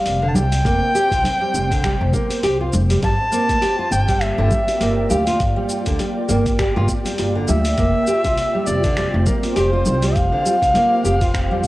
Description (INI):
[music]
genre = organic downtempo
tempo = 101 BPM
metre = 4/4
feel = swing 57% on 16ths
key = unclear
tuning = A4 = 441 Hz
[part]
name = dark kamancheh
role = melody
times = 0.0-11.7 s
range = C5 to A5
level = -20 LUFS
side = equal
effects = cassette tape, tape echo
[part]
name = ethereal airy pad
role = sustained chords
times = 0.0-11.7 s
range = Bb3 to G5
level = -27 LUFS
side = equal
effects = ensemble chorus, built-in reverb, sidechain pumping
[part]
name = nylon-string guitar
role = arpeggios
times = 0.0-11.7 s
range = D3 to G4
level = -22 LUFS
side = right 1 dB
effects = tape echo
[part]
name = upright bass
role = bass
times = 0.1-11.6 s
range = F1 to F2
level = -21 LUFS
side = equal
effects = sidechain pumping
[part]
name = dusty soul sampler-style drum kit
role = drums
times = 0.1-11.7 s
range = cabasa, finger snaps, hi-hat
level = -30 LUFS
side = equal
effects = cassette tape
[part]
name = congas and bongos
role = percussion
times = 0.3-11.7 s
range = none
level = -27 LUFS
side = left 1 dB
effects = none
[part]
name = electronic kick drum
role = drums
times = 0.6-11.7 s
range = none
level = -23 LUFS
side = equal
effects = cassette tape
[sound]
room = moderate spring reverb, RT60 1.9 s, small room ambience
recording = home recording on cassette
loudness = -16 LUFS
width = side -17 dB against mid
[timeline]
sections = 0.0-11.7 A section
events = none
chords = 0.0 Fsus2; 3.0 Gm7; 7.8 Fsus2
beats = 0.06 | 0.65 1.25 1.84 2.43 | 3.03 3.62 4.22 4.81 | 5.40 6.00 6.59 7.19 | 7.78 8.37 8.97 9.56 | 10.16 10.75 11.34